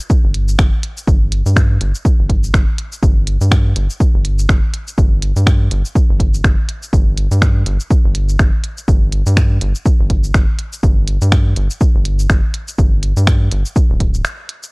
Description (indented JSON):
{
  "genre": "minimal techno",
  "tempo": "123 BPM",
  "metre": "4/4",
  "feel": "swing 57% on 16ths",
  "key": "unclear",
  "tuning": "A4 = 440 Hz",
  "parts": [
    { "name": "minimal click drum kit", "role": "drums", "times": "0.0-14.7 s", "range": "cabasa, finger snaps, hi-hat", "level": "-21 LUFS", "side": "equal", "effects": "none" },
    { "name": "electronic kick drum", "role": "drums", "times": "0.1-14.1 s", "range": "none", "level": "-13 LUFS", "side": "equal", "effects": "none" },
    { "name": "rubbery square bass", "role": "bass", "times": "0.2-14.2 s", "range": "D1 to G2", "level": "-15 LUFS", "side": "equal", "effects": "sidechain pumping" }
  ],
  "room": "little or no reverb",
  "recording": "dry, gritty hardware recording, cassette tape",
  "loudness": "-12 LUFS",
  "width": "side -34 dB against mid",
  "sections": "0.0-14.7 A section",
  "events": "drop 0.0-14.7; break 14.2-14.7",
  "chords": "none"
}